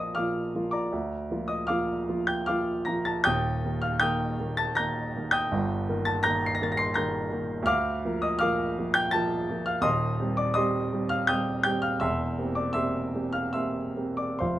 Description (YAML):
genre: classical, romantic nocturne for solo piano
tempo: 66-85 BPM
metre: 3/4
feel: rubato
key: unclear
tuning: A4 = 440 Hz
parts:
  - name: warm grand piano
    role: solo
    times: 0.0-14.6 s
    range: Eb1 to C7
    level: -25 LUFS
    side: equal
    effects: none
room: light reverb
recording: none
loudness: -25 LUFS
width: side -13 dB against mid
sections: 0.0-14.6 A section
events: none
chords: 0.0 Bb; 0.9 Bb/D; 3.3 Eb; 5.5 Eb/G; 7.7 Bb/D; 9.9 Cm/Eb; 12.0 C7/E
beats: 0.17 | 0.93 1.69 2.47 | 3.26 4.01 4.77 | 5.51 6.24 6.96 | 7.68 8.41 9.14 | 9.86 10.57 11.30 | 12.03 12.77 13.56 | 14.41